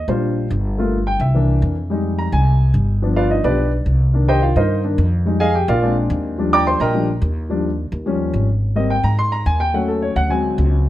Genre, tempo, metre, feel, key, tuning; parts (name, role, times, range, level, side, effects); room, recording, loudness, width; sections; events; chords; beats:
Afro-Cuban jazz; 214 BPM; 4/4; straight; Eb major; A4 = 441 Hz
warm baby grand piano; accompaniment; 0.0-10.8 s; Eb3 to D6; -19 LUFS; left 1 dB
upright bass; bass; 0.0-10.9 s; G1 to Ab2; -18 LUFS; equal
light reverb; -15 LUFS; side -14 dB against mid
0.0-8.6 A section; 8.6-10.9 A section
grand piano solo 0.0-10.9
0.0 Ebmaj7 (rootless); 0.8 Gm7; 1.3 C7; 1.9 Fm7; 3.0 G7; 4.1 Cm7; 5.3 Fm7; 5.8 Bb7; 6.4 Ebmaj7; 8.1 Eb7; 8.6 Abmaj9; 9.7 Ebm7b5; 10.3 D7#11
0.22 0.50 | 0.78 1.06 1.34 1.62 | 1.91 2.19 2.46 2.75 | 3.02 3.30 3.58 3.86 | 4.14 4.42 4.70 4.98 | 5.26 5.54 5.82 6.10 | 6.38 6.66 6.94 7.22 | 7.50 7.78 8.06 8.34 | 8.62 8.90 9.18 9.46 | 9.74 10.02 10.30 10.59 | 10.87